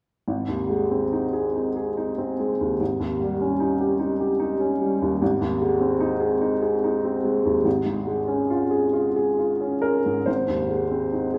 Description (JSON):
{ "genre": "classical, romantic character piece for solo piano", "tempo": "65-77 BPM", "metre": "3/4", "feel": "rubato", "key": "Ab major", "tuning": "A4 = 440 Hz", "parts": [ { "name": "warm upright piano", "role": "solo", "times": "0.3-11.4 s", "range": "Ab1 to C5", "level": "-24 LUFS", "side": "equal", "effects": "none" } ], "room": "wet recital hall reverb, RT60 1.6 s", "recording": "heard from further back in the room", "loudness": "-24 LUFS", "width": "mono", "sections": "0.3-10.3 A section; 10.3-11.4 B section", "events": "none", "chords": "0.3 Ab; 2.8 Eb7/Ab; 5.2 Ab; 7.7 Db/Ab; 10.3 Ab" }